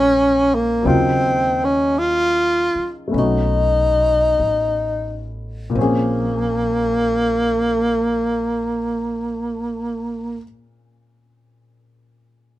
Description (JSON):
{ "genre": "jazz ballad", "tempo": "42-57 BPM", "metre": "4/4", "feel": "swing 68% on 8ths", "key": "Bb minor", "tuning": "A4 = 439 Hz", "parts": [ { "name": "mellow tenor saxophone", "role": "melody", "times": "0.0-10.4 s", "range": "Bb3 to F4", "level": "-17 LUFS", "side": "equal", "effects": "none" }, { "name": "warm baby grand piano", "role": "accompaniment", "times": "0.0-12.6 s", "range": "Bb2 to C5", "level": "-23 LUFS", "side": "left 2 dB", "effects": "none" }, { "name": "upright bass", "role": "bass", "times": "0.0-10.3 s", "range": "A1 to Eb2", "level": "-26 LUFS", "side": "equal", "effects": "none" } ], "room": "light reverb", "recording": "minimal, uncompressed stereo recording", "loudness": "-16 LUFS", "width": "side -15 dB against mid", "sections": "0.0-5.8 A section; 5.8-11.4 B section", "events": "slowing down 0.0-5.8", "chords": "0.0 Bbm7; 0.8 Ebm7; 3.1 B7; 5.8 Bbm7" }